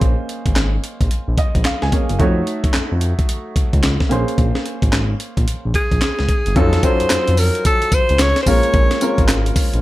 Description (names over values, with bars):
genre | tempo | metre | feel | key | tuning
R&B, new jack swing | 110 BPM | 4/4 | swing 63% on 16ths | Bb minor | A4 = 440 Hz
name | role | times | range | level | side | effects
warm baby grand piano | accompaniment | 0.0-9.8 s | Gb3 to Ab5 | -22 LUFS | equal | none
smooth gliding synth bass | bass | 0.0-9.8 s | Gb1 to F2 | -19 LUFS | equal | none
breakbeat sampler-style drum kit | drums | 0.0-9.8 s | handclaps, hi-hat, kick drum, snare drum, tambourine | -17 LUFS | equal | none
warm alto saxophone | melody | 5.8-9.3 s | Ab4 to Db5 | -19 LUFS | equal | none
room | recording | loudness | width
little or no reverb | none | -14 LUFS | side -16 dB against mid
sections
0.0-6.6 A section; 6.6-9.8 B section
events
grand piano fill 1.1-2.2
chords
0.0 Bbm9; 2.2 F7b9b13; 4.1 Bbm9; 6.6 F7b9b13; 8.5 Bbm9